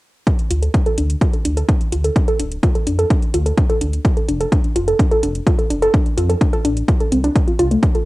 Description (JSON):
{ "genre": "melodic techno", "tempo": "127 BPM", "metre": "4/4", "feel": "straight", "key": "D minor", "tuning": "A4 = 441 Hz", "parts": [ { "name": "woody wave-folded pluck", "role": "arpeggios", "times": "0.3-8.1 s", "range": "A3 to A4", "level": "-20 LUFS", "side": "equal", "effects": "chorus, sidechain pumping, cassette tape, tape echo" }, { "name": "electronic hi-hat", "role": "drums", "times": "0.3-8.0 s", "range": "none", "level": "-31 LUFS", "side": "equal", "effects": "overdrive" }, { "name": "electronic kick drum", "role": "drums", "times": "0.3-7.9 s", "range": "none", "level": "-16 LUFS", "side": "equal", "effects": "overdrive" }, { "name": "dark detuned saw bass", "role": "bass", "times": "0.5-7.8 s", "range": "D1 to F2", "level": "-20 LUFS", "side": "equal", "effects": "sidechain pumping" } ], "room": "light reverb", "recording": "home recording on cassette", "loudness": "-15 LUFS", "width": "side -19 dB against mid", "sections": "0.3-8.1 A section", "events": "none", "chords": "0.3 Dm; 4.0 F", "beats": "| 0.27 0.74 1.21 1.69 | 2.16 2.63 3.10 3.58 | 4.05 4.52 4.99 5.47 | 5.94 6.41 6.88 7.36 | 7.83" }